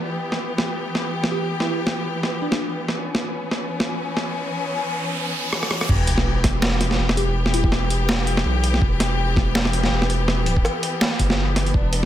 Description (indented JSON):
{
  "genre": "half-time drum and bass",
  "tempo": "164 BPM",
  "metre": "4/4",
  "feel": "swing 56% on 16ths, half-time",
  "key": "E dorian",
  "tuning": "A4 = 445 Hz",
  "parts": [
    { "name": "bright studio string section", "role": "sustained chords", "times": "0.0-12.1 s", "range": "E3 to G4", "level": "-26 LUFS", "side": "left 2 dB", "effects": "sidechain pumping" },
    { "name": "boom bap sampler-style drum kit", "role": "drums", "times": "0.3-12.1 s", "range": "crash cymbal, hi-hat, rim click, snare drum", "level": "-23 LUFS", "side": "right 1 dB", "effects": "none" },
    { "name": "bell-like FM electric piano", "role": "melody", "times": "1.3-2.8, 7.2-7.7 s", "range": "D4 to G4", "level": "-30 LUFS", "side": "equal", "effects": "chorus, dub echo" },
    { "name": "riser and sub drop", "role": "sound effects", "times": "4.3-7.4 s", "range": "none", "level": "-28 LUFS", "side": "equal", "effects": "none" },
    { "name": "saturated sub bass", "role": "bass", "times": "5.9-12.1 s", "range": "E1 to B1", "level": "-22 LUFS", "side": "equal", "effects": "none" },
    { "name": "electronic kick drum", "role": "drums", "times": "5.9-11.8 s", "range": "none", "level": "-20 LUFS", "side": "equal", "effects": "none" }
  ],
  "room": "moderate spring reverb, RT60 1.4 s",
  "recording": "echo-heavy mix",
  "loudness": "-19 LUFS",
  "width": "side -12 dB against mid",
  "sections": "0.0-5.9 A section; 5.9-12.1 B section",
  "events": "riser 4.3-5.9; drum fill 5.5-5.9; drop 5.9-12.1; impact 5.9-7.4",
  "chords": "0.0 Em"
}